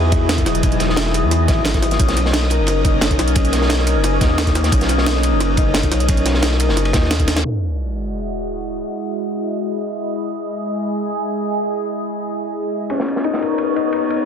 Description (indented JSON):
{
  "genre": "liquid drum and bass",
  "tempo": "176 BPM",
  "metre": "4/4",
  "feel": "straight",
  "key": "E lydian",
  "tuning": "A4 = 440 Hz",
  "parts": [
    { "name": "lush unison pad", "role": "sustained chords", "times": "0.0-14.3 s", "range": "E3 to D#5", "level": "-22 LUFS", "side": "equal", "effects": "chorus, phaser" },
    { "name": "felt-muted upright piano", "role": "arpeggios", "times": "0.0-7.5, 12.9-14.3 s", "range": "C#4 to A#4", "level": "-22 LUFS", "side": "left 5 dB", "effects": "ping-pong delay" },
    { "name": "saturated sub bass", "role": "bass", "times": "0.0-7.4 s", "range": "E1 to E2", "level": "-19 LUFS", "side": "equal", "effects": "tube saturation" },
    { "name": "breakbeat sampler-style drum kit", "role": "drums", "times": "0.1-7.5 s", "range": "crash cymbal, hi-hat, snare drum", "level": "-22 LUFS", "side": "right 2 dB", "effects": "low-pass filter on hats, low-pass filter on snare, low-pass filter on cymbals" },
    { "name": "crunchy breakbeat drum kit", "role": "drums", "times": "0.1-7.4, 12.9-14.2 s", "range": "ride cymbal, snare drum", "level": "-25 LUFS", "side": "equal", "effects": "high-pass filter on cymbals, high-pass filter on snare, high-pass filter on room" },
    { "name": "electronic kick drum", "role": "drums", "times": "0.1-7.3 s", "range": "none", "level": "-18 LUFS", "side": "equal", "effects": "none" },
    { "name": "sub drop", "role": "sound effects", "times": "7.4-8.8 s", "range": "none", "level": "-24 LUFS", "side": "equal", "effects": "none" }
  ],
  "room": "small room ambience",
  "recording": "dense, heavily limited modern master, low-pass filter",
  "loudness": "-16 LUFS",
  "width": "side -8 dB against mid",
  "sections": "0.0-7.4 A section; 7.4-14.3 B section",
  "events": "drop 0.0-7.4; drum fill 7.3; band accent 7.4; impact 7.4-8.8; filter sweep on analog synth pad 7.4-14.3",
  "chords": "0.0 Emaj9; 2.0 Bmaj9; 7.4 Emaj9; 12.9 Bmaj9"
}